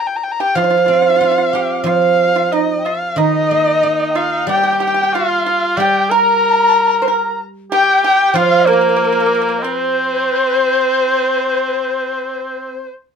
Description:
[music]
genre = chinese traditional, Chinese chamber ensemble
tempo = 93 BPM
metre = 4/4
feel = straight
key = C yu mode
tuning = A4 = 440 Hz
[part]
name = dark erhu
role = melody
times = 0.0-12.9 s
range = Bb4 to Bb5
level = -17 LUFS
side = left 2 dB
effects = none
[part]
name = large dizi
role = second line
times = 0.4-12.9 s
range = Bb4 to Bb5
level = -20 LUFS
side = left 4 dB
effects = none
[part]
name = pipa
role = second line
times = 0.4-12.9 s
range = Bb3 to C5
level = -21 LUFS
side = right 6 dB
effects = none
[part]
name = guzheng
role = accompaniment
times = 0.6-10.3 s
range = Eb3 to G4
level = -18 LUFS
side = right 4 dB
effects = none
[part]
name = clear cor anglais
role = second line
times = 3.2-12.9 s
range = Bb3 to Bb4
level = -19 LUFS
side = right 2 dB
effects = none
[sound]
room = light reverb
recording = close, detailed microphones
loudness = -12 LUFS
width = side -6 dB against mid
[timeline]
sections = 0.0-13.2 A section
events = none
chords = none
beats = | 0.56 1.21 1.86 2.52 | 3.17 3.83 4.49 5.14 | 5.79 6.43 7.08 7.72 | 8.36 9.00 9.63 10.28 | 10.92 11.57 12.22 12.89

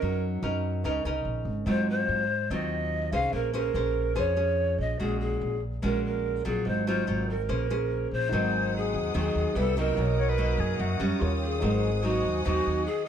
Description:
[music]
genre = bossa nova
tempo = 145 BPM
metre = 4/4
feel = straight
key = unclear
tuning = A4 = 440 Hz
[part]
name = large pan pipes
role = melody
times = 0.0-13.1 s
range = Gb4 to F5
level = -29 LUFS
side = equal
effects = none
[part]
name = nylon-string guitar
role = accompaniment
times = 0.0-13.1 s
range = F#2 to C5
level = -30 LUFS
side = right 1 dB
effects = none
[part]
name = upright bass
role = bass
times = 0.0-12.9 s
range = Ab1 to Ab2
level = -30 LUFS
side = equal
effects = none
[part]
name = warm concert grand piano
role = accompaniment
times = 8.3-13.1 s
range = Eb4 to A#5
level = -39 LUFS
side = right 2 dB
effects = none
[part]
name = dark studio string section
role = sustained chords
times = 8.3-13.1 s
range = C4 to E6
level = -38 LUFS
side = left 2 dB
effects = none
[part]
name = bright reedy jazz flute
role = second line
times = 10.2-11.3 s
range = F#4 to Db5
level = -34 LUFS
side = left 4 dB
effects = none
[sound]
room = light reverb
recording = none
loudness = -25 LUFS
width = side -8 dB against mid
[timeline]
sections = 0.0-8.3 A section; 8.3-13.1 B section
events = none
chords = 0.0 Gb6; 1.7 Ab6; 3.3 Bbm9; 5.0 Gbmaj9#11/Bb; 6.7 Ab6; 7.5 Bbm9; 8.3 Ab7; 9.6 Cmaj7; 10.0 Bmaj7; 11.2 Eb9; 11.6 Ab7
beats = | 0.02 0.43 0.85 1.26 | 1.68 2.09 2.51 2.92 | 3.34 3.75 4.17 4.58 | 5.00 5.41 5.83 6.24 | 6.66 7.07 7.49 7.90 | 8.32 8.73 9.14 9.56 | 9.97 10.38 10.80 11.21 | 11.63 12.04 12.46 12.87

